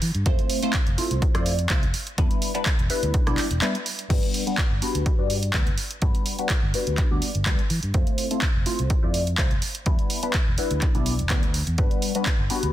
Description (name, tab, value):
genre	filtered disco house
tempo	125 BPM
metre	4/4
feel	swing 53% on 16ths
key	G major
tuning	A4 = 441 Hz
part	fingered electric bass	bass	0.0-12.7 s	E1 to E3	-26 LUFS	equal	sidechain pumping, low-pass filter
part	punchy analog drum machine	drums	0.0-12.7 s	crash cymbal, handclaps, hi-hat, rim click	-28 LUFS	right 1 dB	sidechain pumping on hats, sidechain pumping on cymbals
part	funky polysynth comp	accompaniment	0.3-12.7 s	G3 to D5	-28 LUFS	left 2 dB	chorus, phaser, sidechain pumping, low-pass filter
part	electronic kick drum	drums	0.3-12.4 s	none	-23 LUFS	equal	none
room	light reverb, digital ambience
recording	dense, heavily limited modern master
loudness	-21 LUFS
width	side -13 dB against mid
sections	0.0-4.1 A section; 4.1-12.7 B section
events	drop 0.0-4.1; break 3.6-4.1; filter sweep 4.1-12.7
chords	0.3 Fmaj7; 1.9 Em7; 4.1 Gmaj7; 7.9 Fmaj7; 9.6 Em7; 11.8 Gmaj7